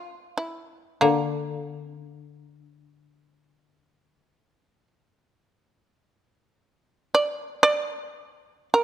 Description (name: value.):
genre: japanese traditional, Japanese chamber music.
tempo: free time.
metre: none.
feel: none.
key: D hirajoshi.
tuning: A4 = 441 Hz.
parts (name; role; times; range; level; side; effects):
shamisen; melody; 0.0-8.8 s; D4 to D5; -21 LUFS; right 2 dB; none.
koto; accompaniment; 1.0-4.4 s; D3; -26 LUFS; left 6 dB; none.
room: light reverb.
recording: close, detailed microphones.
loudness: -22 LUFS.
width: side -11 dB against mid.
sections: 0.0-8.8 A section.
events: none.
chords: none.